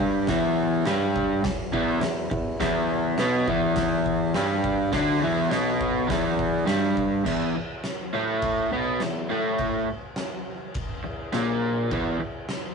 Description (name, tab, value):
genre	garage rock duo or trio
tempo	103 BPM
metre	4/4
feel	straight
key	unclear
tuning	A4 = 442 Hz
part	crunchy overdriven guitar	riff	0.0-12.2 s	E2 to D4	-23 LUFS	equal	none
part	warm bassoon	bass	0.0-12.5 s	A#1 to A2	-31 LUFS	equal	tube saturation
part	oversized low-tuned drum kit	drums	0.0-12.6 s	crash cymbal, hi-hat, kick drum, snare drum	-31 LUFS	equal	none
room	moderate small room ambience, RT60 0.5 s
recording	rough rehearsal-room recording, nothing above 10.5 kHz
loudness	-22 LUFS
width	side -5 dB against mid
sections	0.0-7.3 A section; 7.3-12.7 B section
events	none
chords	0.0 E5